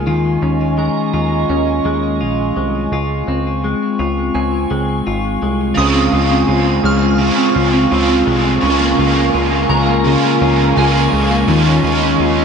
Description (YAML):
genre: dream pop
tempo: 84 BPM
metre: 4/4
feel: straight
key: Db major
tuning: A4 = 440 Hz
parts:
  - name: warbly tape-like pad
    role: sustained chords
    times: 0.0-12.4 s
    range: C4 to Db6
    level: -20 LUFS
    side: right 2 dB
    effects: chorus, built-in reverb, shimmer reverb
  - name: clean electric guitar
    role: arpeggios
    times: 0.0-12.4 s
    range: Db3 to F4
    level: -16 LUFS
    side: left 3 dB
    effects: wide subtle chorus, ping-pong delay, shimmer reverb
  - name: plucky analog bass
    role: bass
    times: 0.0-12.4 s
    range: Ab1 to Eb2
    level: -19 LUFS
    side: right 1 dB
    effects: none
  - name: shimmering bell with halo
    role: texture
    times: 0.8-11.8 s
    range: Ab5 to F6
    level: -25 LUFS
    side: right 1 dB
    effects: ensemble chorus, phaser, ping-pong delay, shimmer reverb
  - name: biting overdriven guitar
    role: accompaniment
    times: 5.7-12.4 s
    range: Db3 to F4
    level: -17 LUFS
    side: right 4 dB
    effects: harmonic tremolo, analog chorus, shimmer reverb
room: moderate scoring stage reverb, RT60 1.7 s, digital ambience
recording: nothing above 10.5 kHz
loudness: -12 LUFS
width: side -6 dB against mid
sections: 0.0-5.8 A section; 5.8-12.4 B section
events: none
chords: 0.1 Eb9sus4; 2.9 Dbmaj7; 8.6 Bbm7/Db; 11.5 Eb9sus4